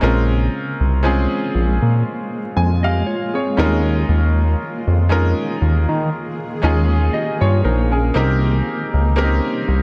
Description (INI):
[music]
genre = R&B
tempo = 59 BPM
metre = 4/4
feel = swing 54% on 16ths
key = Bb dorian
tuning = A4 = 441 Hz
[part]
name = bright grand piano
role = accompaniment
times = 0.0-9.8 s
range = G3 to Ab5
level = -24 LUFS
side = equal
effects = none
[part]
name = granular cloud pad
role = sustained chords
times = 0.0-9.8 s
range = C3 to Ab4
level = -29 LUFS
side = equal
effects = built-in reverb
[part]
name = fat analog bass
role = bass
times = 0.0-9.8 s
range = Bb1 to Eb3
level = -18 LUFS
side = equal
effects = none
[part]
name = mellow electric guitar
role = arpeggios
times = 2.8-8.4 s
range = C4 to Eb5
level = -28 LUFS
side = equal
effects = digital delay
[sound]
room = light reverb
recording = none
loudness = -18 LUFS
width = mono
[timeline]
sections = 0.0-9.8 A section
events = none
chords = 0.0 Bbm7; 8.1 Cm7